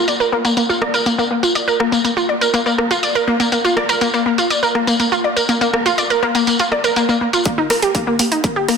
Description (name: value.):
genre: progressive house.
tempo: 122 BPM.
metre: 4/4.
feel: straight.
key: unclear.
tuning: A4 = 441 Hz.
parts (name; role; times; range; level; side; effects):
analog pluck; arpeggios; 0.0-8.8 s; Bb3 to D5; -15 LUFS; equal; chorus, sidechain pumping, dub echo.
big-room dance drum kit; drums; 0.1-8.8 s; hi-hat, rim click, tambourine; -20 LUFS; equal; overdrive, low-pass filter on hats, low-pass filter on perc, low-pass filter on snare.
electronic kick drum; drums; 7.5-8.5 s; none; -21 LUFS; equal; overdrive, high-pass filter on kick.
room: wet recital hall reverb, RT60 1.6 s, digital ambience.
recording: dense, heavily limited modern master.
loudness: -14 LUFS.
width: side -6 dB against mid.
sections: 0.0-7.5 A section; 7.5-8.8 B section.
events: build-up 7.5-8.8.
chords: none.